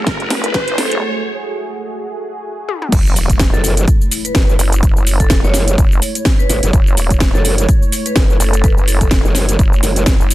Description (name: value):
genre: bass house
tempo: 126 BPM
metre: 4/4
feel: swing 56% on 16ths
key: F# minor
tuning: A4 = 440 Hz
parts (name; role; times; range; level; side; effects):
- dark analog pad; sustained chords; 0.0-10.3 s; A3 to G#4; -29 LUFS; right 3 dB; chorus, sidechain pumping
- vowel-sweep wobble bass; bass; 0.0-10.3 s; E1 to G#1; -17 LUFS; equal; chorus, tube saturation, sidechain pumping, high-pass filter
- riser and impact; sound effects; 0.0-4.8 s; none; -23 LUFS; equal; none
- warbly tape-like pad; texture; 0.0-10.3 s; A3 to C#5; -26 LUFS; right 1 dB; chorus, built-in reverb, sidechain pumping
- electronic kick drum; drums; 0.1-10.2 s; none; -13 LUFS; equal; none
- house drum kit; drums; 0.1-10.3 s; crash cymbal, hi-hat, shaker, snare drum, toms; -19 LUFS; equal; none
- vibraphone with medium hard mallets; melody; 0.4-9.1 s; A4 to C#5; -24 LUFS; equal; digital delay
- growl bass; bass; 3.5-10.2 s; F#1 to G#1; -15 LUFS; equal; chorus, sidechain pumping
room: little or no reverb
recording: dense, heavily limited modern master, high-pass filter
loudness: -11 LUFS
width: side -16 dB against mid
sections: 0.0-2.9 A section; 2.9-10.3 B section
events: build-up 0.0-2.9; drum fill 0.0-1.0, 2.7; riser 0.0-1.0; filter sweep 0.0-2.9; break 1.0-2.9; drop 2.9-10.3; impact 2.9-4.8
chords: 0.0 F#madd9